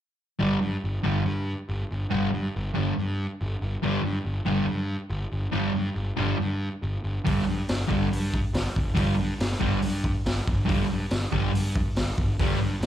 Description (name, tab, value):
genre	garage rock duo or trio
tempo	140 BPM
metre	4/4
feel	straight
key	unclear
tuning	A4 = 439 Hz
part	fuzz guitar	riff	0.4-12.6 s	G2 to G3	-26 LUFS	equal	distortion, slapback echo
part	fuzz picked electric bass	bass	0.4-12.9 s	G1 to G2	-28 LUFS	equal	overdrive
part	raw garage drum kit	drums	7.3-12.9 s	hi-hat, kick drum, snare drum	-27 LUFS	equal	none
room	little or no reverb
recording	live gig heard through the venue's PA, club reverb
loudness	-24 LUFS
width	side -11 dB against mid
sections	0.4-12.9 A section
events	none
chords	0.4 G5